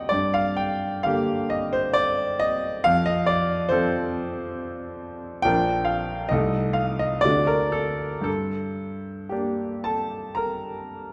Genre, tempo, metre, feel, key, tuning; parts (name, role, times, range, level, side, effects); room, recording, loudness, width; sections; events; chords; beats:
classical, romantic nocturne for solo piano; 56-71 BPM; 3/4; rubato; G minor; A4 = 436 Hz
clear concert grand piano; solo; 0.0-11.1 s; Bb1 to Bb5; -25 LUFS; equal
wet recital hall reverb, RT60 1.6 s; -24 LUFS; mono
0.0-11.1 A section
0.1 Gm; 2.9 F; 5.5 Bb; 6.3 Adim/C; 7.2 D; 8.3 Gm
| 0.11 1.05 1.98 | 2.86 3.71 4.57 | 5.46 6.32 7.25 | 8.27 9.32 10.38